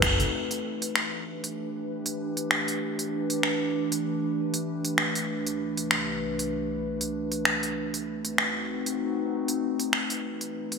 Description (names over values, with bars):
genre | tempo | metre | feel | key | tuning
organic downtempo | 97 BPM | 4/4 | swing 56% on 16ths | E minor | A4 = 440 Hz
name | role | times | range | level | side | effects
warbly tape-like pad | sustained chords | 0.0-10.8 s | C2 to B4 | -29 LUFS | equal | chorus, built-in reverb, vintage 12-bit sampler grit, sidechain pumping
deep house drum kit | drums | 0.0-10.8 s | finger snaps, hi-hat, shaker | -27 LUFS | equal | gated reverb
room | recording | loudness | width
wet plate reverb, RT60 2.7 s | bright 1980s-style digital production | -26 LUFS | side -5 dB against mid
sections
0.3-10.8 A section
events
band accent 0.0-0.3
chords
0.3 Em7; 5.3 Cmaj7; 7.8 B7b9; 10.2 Em7